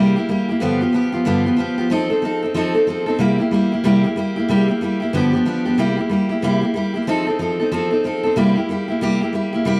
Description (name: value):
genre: rock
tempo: 186 BPM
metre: 4/4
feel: swing 61% on 8ths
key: C mixolydian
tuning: A4 = 440 Hz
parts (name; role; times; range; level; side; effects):
- picked steel-string acoustic guitar; solo; 0.0-9.8 s; G2 to A4; -19 LUFS; equal; none
room: moderate studio reverb, RT60 0.9 s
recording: band playing live in one room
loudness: -19 LUFS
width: mono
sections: 0.0-5.8 A section; 5.8-9.8 B section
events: none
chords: 0.0 C7; 0.6 G7; 1.9 F7; 3.2 C7; 5.1 G7; 5.8 C7; 7.1 F7; 8.4 C7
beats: 0.29 | 0.61 0.94 1.26 1.59 | 1.91 2.23 2.56 2.88 | 3.20 3.53 3.85 4.17 | 4.50 4.82 5.14 5.46 | 5.79 6.11 6.43 6.75 | 7.08 7.40 7.72 8.04 | 8.37 8.69 9.01 9.33 | 9.65